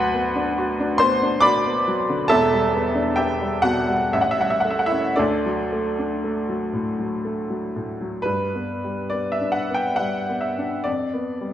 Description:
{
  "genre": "classical, romantic nocturne for solo piano",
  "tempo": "54-75 BPM",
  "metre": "3/4",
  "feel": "rubato",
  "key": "G major",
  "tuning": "A4 = 440 Hz",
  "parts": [
    { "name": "warm upright piano", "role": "solo", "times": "0.0-11.5 s", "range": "E1 to D6", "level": "-20 LUFS", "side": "equal", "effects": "none" }
  ],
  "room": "wet recital hall reverb, RT60 1.5 s",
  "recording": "nothing above 10.3 kHz",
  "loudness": "-20 LUFS",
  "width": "side -11 dB against mid",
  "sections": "0.0-8.2 A section; 8.2-11.5 B section",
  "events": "none",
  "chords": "0.0 Bm/D; 2.3 Em7; 4.1 A7; 5.2 D; 8.2 G; 10.9 G7/F"
}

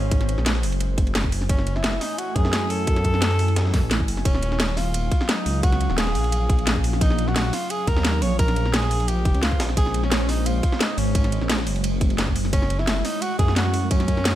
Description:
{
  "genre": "liquid drum and bass",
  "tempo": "174 BPM",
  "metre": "4/4",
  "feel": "straight",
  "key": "unclear",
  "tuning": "A4 = 440 Hz",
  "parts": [
    { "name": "breathy tenor saxophone", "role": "melody", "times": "0.0-14.4 s", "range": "Db4 to Db5", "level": "-28 LUFS", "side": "equal", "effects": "tape echo" },
    { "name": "ethereal airy pad", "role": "sustained chords", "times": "0.0-14.4 s", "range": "Gb3 to Ab5", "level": "-30 LUFS", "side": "equal", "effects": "ensemble chorus, built-in reverb, tremolo, sidechain pumping" },
    { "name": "dark detuned saw bass", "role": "bass", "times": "0.0-14.4 s", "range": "Eb1 to Gb2", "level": "-23 LUFS", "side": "equal", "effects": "none" },
    { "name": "breakbeat sampler-style drum kit", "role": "drums", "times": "0.1-14.3 s", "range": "hi-hat, ride cymbal, snare drum", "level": "-33 LUFS", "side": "right 1 dB", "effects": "high-pass filter on cymbals, high-pass filter on snare, high-pass filter on hats" },
    { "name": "electronic kick drum", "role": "drums", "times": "0.1-14.2 s", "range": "none", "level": "-22 LUFS", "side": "equal", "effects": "none" },
    { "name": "garage drum kit", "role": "drums", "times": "0.1-14.3 s", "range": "hi-hat, ride cymbal, snare drum", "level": "-26 LUFS", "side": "equal", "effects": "none" }
  ],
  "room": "digital ambience",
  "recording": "none",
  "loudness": "-19 LUFS",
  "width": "side -13 dB against mid",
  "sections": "0.0-14.4 A section",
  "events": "none",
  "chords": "0.0 Bbm7; 0.6 Gbm7; 4.3 Ebm7; 8.2 Bbm7; 11.7 Gbm7"
}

